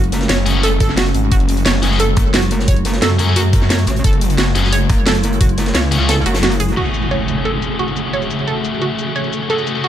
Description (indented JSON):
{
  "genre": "dark technical drum and bass",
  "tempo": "176 BPM",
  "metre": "4/4",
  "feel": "straight",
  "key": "F# minor",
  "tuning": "A4 = 438 Hz",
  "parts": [
    { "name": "swarming drone", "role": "sustained chords", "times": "0.0-9.9 s", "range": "C#3 to G#4", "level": "-22 LUFS", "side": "equal", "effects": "built-in reverb, sidechain pumping" },
    { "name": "analog pluck", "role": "arpeggios", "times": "0.0-9.9 s", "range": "F#4 to C#5", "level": "-22 LUFS", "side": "right 5 dB", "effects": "chorus, cassette tape, sidechain pumping, digital delay" },
    { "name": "metallic wobble bass", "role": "bass", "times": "0.0-6.8 s", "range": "F#1 to F#2", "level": "-17 LUFS", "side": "equal", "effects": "chorus" },
    { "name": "drum and bass drum kit", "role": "drums", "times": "0.0-9.9 s", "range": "cabasa, crash cymbal, hi-hat, snare drum", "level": "-20 LUFS", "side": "equal", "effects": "low-pass filter on hats, low-pass filter on cymbals, low-pass filter on snare, low-pass filter on perc, low-pass filter on room" },
    { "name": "raw garage drum kit", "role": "drums", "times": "0.1-6.8 s", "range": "hi-hat, snare drum", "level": "-27 LUFS", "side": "left 1 dB", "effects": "high-pass filter on hats, high-pass filter on snare, high-pass filter on room" },
    { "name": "snarling distorted saw bass", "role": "bass", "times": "0.3-4.9 s", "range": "F#1 to G#1", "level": "-17 LUFS", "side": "equal", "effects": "distortion, overdrive, sidechain pumping" },
    { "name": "high-gain distorted guitar", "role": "stabs", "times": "0.5-9.9 s", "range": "A3 to G#4", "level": "-22 LUFS", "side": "left 4 dB", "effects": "distortion, low-pass filter, digital delay" },
    { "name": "electronic kick drum", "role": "drums", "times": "0.8-5.5 s", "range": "none", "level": "-14 LUFS", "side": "equal", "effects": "none" },
    { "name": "impact", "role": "sound effects", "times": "6.8-8.1 s", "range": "none", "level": "-25 LUFS", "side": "equal", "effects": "none" }
  ],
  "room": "light reverb",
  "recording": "none",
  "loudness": "-13 LUFS",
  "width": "side -11 dB against mid",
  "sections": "0.0-6.8 A section; 6.8-9.9 B section",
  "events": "kick drops out 6.1-6.8; impact 6.8-8.1",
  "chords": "0.0 F#madd9"
}